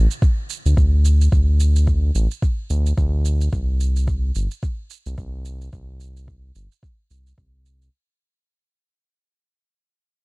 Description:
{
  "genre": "organic downtempo",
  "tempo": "109 BPM",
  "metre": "4/4",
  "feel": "swing 58% on 16ths",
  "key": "unclear",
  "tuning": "A4 = 440 Hz",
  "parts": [
    { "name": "round analog bass", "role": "bass", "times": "0.0-7.9 s", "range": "G1 to D2", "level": "-17 LUFS", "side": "equal", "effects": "none" },
    { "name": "shaker", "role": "drums", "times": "0.1-7.9 s", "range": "none", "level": "-36 LUFS", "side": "right 8 dB", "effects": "none" },
    { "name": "electronic kick drum", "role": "drums", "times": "0.2-7.5 s", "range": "none", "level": "-20 LUFS", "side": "equal", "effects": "none" }
  ],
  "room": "little or no reverb",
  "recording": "dark, warm production",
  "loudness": "-17 LUFS",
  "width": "side -30 dB against mid",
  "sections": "0.0-7.9 A section",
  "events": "fade-out 0.0-7.9",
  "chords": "none"
}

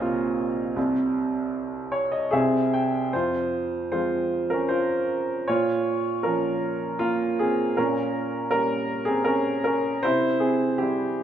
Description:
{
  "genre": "classical, lyrical solo piano",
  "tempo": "78 BPM",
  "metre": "3/4",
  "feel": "rubato",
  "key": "F harmonic minor from 3.1 s",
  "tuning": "A4 = 440 Hz",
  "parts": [
    { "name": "warm baby grand piano", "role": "solo", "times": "0.0-11.2 s", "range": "Bb1 to G5", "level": "-22 LUFS", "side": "right 1 dB", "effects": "none" }
  ],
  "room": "moderate scoring stage reverb, RT60 1.8 s",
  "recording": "recorded in a church or concert hall",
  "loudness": "-22 LUFS",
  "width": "side -9 dB against mid",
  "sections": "0.0-3.1 A section; 3.1-11.2 B section",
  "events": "grand piano fill 1.5-3.1",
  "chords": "0.0 Bbsus2; 0.8 Csus4; 2.3 N.C.; 3.1 Fm; 5.5 Bbm; 7.8 Gdim/Bb; 10.0 C"
}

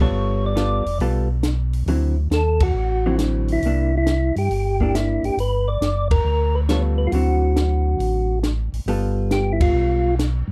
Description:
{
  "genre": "soul jazz organ trio",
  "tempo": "137 BPM",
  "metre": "4/4",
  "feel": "swing 68% on 8ths",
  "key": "unclear",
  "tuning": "A4 = 440 Hz",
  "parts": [
    { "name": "percussive tonewheel organ", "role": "melody", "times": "0.0-10.2 s", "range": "E4 to D5", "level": "-25 LUFS", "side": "equal", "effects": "slow rotary speaker" },
    { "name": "vintage hollow-body jazz guitar", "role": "accompaniment", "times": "0.0-10.1 s", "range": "D3 to A4", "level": "-27 LUFS", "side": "equal", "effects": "none" },
    { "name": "mellow tonewheel organ", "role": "bass", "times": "0.0-10.5 s", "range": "F1 to G2", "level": "-23 LUFS", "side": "equal", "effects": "chorus vibrato, stopped rotary speaker" },
    { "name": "compact cocktail drum kit", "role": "drums", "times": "0.6-10.3 s", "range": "hi-hat, kick drum, ride cymbal, snare drum", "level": "-26 LUFS", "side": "equal", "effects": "none" }
  ],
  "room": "light reverb",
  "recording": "dark, warm production",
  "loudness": "-20 LUFS",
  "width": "mono",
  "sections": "0.0-8.9 A section; 8.9-10.5 A section",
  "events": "band accent 2.5, 6.0, 9.5",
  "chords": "0.0 G9; 1.9 D9; 3.6 C9; 5.4 G9; 7.1 D9; 8.9 G9"
}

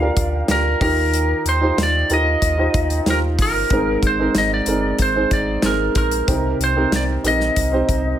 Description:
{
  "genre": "piano-driven pop",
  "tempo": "93 BPM",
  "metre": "4/4",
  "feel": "straight",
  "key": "unclear",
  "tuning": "A4 = 442 Hz",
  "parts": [
    { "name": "lightly driven lead guitar", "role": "melody", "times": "0.0-8.2 s", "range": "Bb4 to F5", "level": "-20 LUFS", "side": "equal", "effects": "none" },
    { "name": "warm upright piano", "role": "accompaniment", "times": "0.0-8.2 s", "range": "Ab2 to C5", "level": "-21 LUFS", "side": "right 2 dB", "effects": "none" },
    { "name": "warm sub bass", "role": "bass", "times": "0.0-8.1 s", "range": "G1 to Eb2", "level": "-22 LUFS", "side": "equal", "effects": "none" },
    { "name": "modern studio drum kit", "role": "drums", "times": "0.2-8.0 s", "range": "hi-hat, kick drum, snare drum", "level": "-22 LUFS", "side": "equal", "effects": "none" }
  ],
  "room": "light reverb",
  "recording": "none",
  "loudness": "-16 LUFS",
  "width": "side -10 dB against mid",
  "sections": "0.0-8.2 A section",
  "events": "none",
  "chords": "0.0 Bb6; 0.8 Ebadd9; 3.7 Abadd9; 6.3 Cm7"
}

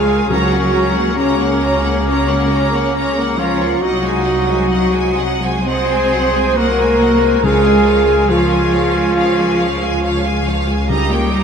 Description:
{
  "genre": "classical, slow romantic movement for symphony orchestra",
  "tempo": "69 BPM",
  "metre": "4/4",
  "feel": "rubato",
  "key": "Db major",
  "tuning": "A4 = 440 Hz",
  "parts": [
    { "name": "clear studio violin section", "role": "melody", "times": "0.0-11.4 s", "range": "F5 to Bb5", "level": "-24 LUFS", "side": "right 1 dB", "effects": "none" },
    { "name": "mellow large flute ensemble", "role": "second line", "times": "0.0-11.4 s", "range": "Db5 to C6", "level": "-25 LUFS", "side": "right 2 dB", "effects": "none" },
    { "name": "rich studio violin section", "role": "second line", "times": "0.0-11.4 s", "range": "Bb4 to F5", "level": "-28 LUFS", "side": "equal", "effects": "none" },
    { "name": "warm clarinet", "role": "second line", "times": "0.0-11.4 s", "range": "Db4 to C5", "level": "-25 LUFS", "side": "right 3 dB", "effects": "none" },
    { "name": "warm oboe", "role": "second line", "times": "0.0-11.4 s", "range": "Bb3 to Ab4", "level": "-24 LUFS", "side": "left 4 dB", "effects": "none" },
    { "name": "rich studio viola section", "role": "accompaniment", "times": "0.0-11.4 s", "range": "F3 to Db4", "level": "-25 LUFS", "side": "left 4 dB", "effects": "none" },
    { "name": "mellow French horn section", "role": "sustained chords", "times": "0.0-11.4 s", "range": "Db4 to C5", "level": "-17 LUFS", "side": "right 1 dB", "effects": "none" },
    { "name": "clear studio cello section", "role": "bass", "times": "0.0-11.4 s", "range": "Db3 to C4", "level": "-20 LUFS", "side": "left 1 dB", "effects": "none" },
    { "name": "warm studio double bass section", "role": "bass", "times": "0.0-11.4 s", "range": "C2 to Db2", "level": "-21 LUFS", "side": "equal", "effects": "none" },
    { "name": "timpani", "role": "percussion", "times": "0.3-1.6, 7.4-11.4 s", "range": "Db3", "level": "-25 LUFS", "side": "left 2 dB", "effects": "none" }
  ],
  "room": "wet huge ambient reverb, RT60 7.8 s",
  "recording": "in a vast, echoing space",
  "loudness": "-13 LUFS",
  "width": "side -6 dB against mid",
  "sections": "0.0-11.4 A section",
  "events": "none",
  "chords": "0.3 Gb/Db; 3.8 Ab7/C; 7.4 Db; 10.9 Eb7/Db"
}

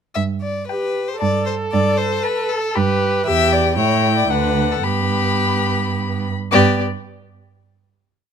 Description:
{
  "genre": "quick classical-period movement for string quartet",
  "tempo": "106-120 BPM",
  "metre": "3/4",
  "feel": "rubato",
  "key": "G major",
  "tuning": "A4 = 440 Hz",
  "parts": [
    { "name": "clear violin", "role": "second line", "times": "0.1-6.8 s", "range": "G4 to E5", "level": "-21 LUFS", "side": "left 5 dB", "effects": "none" },
    { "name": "rich cello", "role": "bass", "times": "0.2-6.8 s", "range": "D2 to A2", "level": "-20 LUFS", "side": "right 5 dB", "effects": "none" },
    { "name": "rich violin", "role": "melody", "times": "0.7-6.8 s", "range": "D5 to B5", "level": "-21 LUFS", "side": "left 7 dB", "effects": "none" },
    { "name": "warm viola", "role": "accompaniment", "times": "0.7-6.8 s", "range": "B3 to B4", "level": "-23 LUFS", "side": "right 3 dB", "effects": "none" }
  ],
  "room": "moderate large studio reverb, RT60 1.3 s",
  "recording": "close, detailed microphones",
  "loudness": "-16 LUFS",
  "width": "side -7 dB against mid",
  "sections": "0.2-6.5 theme; 6.5-8.1 final chord",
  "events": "none",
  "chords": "0.2 G; 1.2 Am7/G; 2.8 G; 3.3 Em; 3.8 A7; 4.3 D; 4.8 G"
}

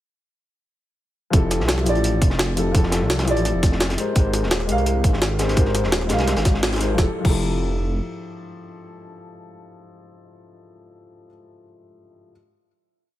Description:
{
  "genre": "liquid drum and bass",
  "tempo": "170 BPM",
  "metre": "4/4",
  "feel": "straight",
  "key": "F major",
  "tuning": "A4 = 440 Hz",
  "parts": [
    { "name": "dark grand piano", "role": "accompaniment", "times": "1.3-12.3 s", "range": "F3 to F5", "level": "-24 LUFS", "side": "left 1 dB", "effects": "ping-pong delay" },
    { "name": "dark detuned saw bass", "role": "bass", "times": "1.3-8.0 s", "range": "Eb1 to C2", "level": "-23 LUFS", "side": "equal", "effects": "none" },
    { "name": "crunchy breakbeat drum kit", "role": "drums", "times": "1.3-6.9 s", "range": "hi-hat, snare drum", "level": "-30 LUFS", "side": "equal", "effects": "high-pass filter on hats, high-pass filter on snare, high-pass filter on room" },
    { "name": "electronic kick drum", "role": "drums", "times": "1.3-7.4 s", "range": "none", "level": "-19 LUFS", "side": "equal", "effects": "none" },
    { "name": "jungle sampler-style drum kit", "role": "drums", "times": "1.3-7.4 s", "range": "crash cymbal, hi-hat, snare drum", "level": "-25 LUFS", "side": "equal", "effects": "none" }
  ],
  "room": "light reverb, small room ambience",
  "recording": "none",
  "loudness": "-18 LUFS",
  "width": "side -14 dB against mid",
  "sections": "1.3-7.0 drop; 7.0-9.8 final chord",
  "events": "drop 1.3-7.0; band accent 6.6",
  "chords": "1.3 Fmaj9; 4.0 Abmaj9; 7.0 Fmaj9"
}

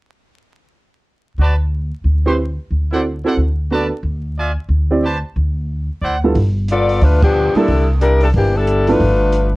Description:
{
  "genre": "jazz, big band swing",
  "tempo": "182 BPM",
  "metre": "4/4",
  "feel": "swing 61% on 8ths",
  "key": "G mixolydian",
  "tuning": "A4 = 444 Hz",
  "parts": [
    { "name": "brilliant trumpet section", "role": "stabs", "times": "1.4-6.2 s", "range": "E4 to C6", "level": "-22 LUFS", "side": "right 2 dB", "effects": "none" },
    { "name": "upright bass", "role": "bass", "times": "1.4-9.6 s", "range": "G1 to D2", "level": "-16 LUFS", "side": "equal", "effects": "none" },
    { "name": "warm upright piano", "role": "accompaniment", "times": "2.3-9.0 s", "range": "G2 to D5", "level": "-17 LUFS", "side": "right 2 dB", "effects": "none" },
    { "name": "open jazz drum kit", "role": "drums", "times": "6.4-9.4 s", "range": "crash cymbal, hi-hat, kick drum", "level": "-23 LUFS", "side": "equal", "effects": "none" },
    { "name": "bright saxophone section", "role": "melody", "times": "6.7-9.5 s", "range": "E3 to D5", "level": "-15 LUFS", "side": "left 2 dB", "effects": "none" }
  ],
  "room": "light reverb",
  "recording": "worn, warbling old tape, cassette tape, vinyl crackle, warbly pitch drift",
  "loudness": "-14 LUFS",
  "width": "side -20 dB against mid",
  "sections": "1.1-6.4 A section; 6.4-9.6 B section",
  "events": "band accent 7.2",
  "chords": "1.1 Bm7; 1.7 E5; 2.4 D9; 3.7 Bm7; 4.4 E7b9; 5.0 Am9; 5.7 D9; 6.4 G9; 7.7 C13; 9.0 G9"
}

